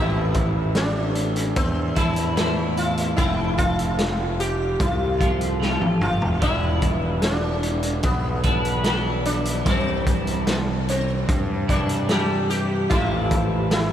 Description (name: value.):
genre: psychedelic rock.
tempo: 74 BPM.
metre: 4/4.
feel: straight.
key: unclear.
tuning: A4 = 435 Hz.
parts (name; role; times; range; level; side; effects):
sitar; melody; 0.0-13.9 s; B3 to G4; -26 LUFS; equal; analog delay.
twangy electric guitar; riff; 0.0-13.9 s; A2 to B4; -26 LUFS; equal; flanger, double-tracked left and right.
fuzz picked electric bass; bass; 0.0-13.9 s; E1 to G2; -25 LUFS; equal; overdrive.
raw garage drum kit; drums; 0.3-13.9 s; hi-hat, kick drum, snare drum, toms; -24 LUFS; equal; none.
room: moderate huge ambient reverb, RT60 6.8 s.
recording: dreamy mix soaked in reverb.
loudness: -20 LUFS.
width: side -10 dB against mid.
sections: 0.0-13.9 A section.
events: drum fill 5.6-6.4.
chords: 0.0 Am; 3.2 F; 6.4 Em7; 9.7 Cadd9; 12.9 Am.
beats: 0.75 1.56 2.37 | 3.17 3.98 4.79 5.60 | 6.41 7.22 8.03 8.84 | 9.65 10.46 11.28 12.09 | 12.90 13.71.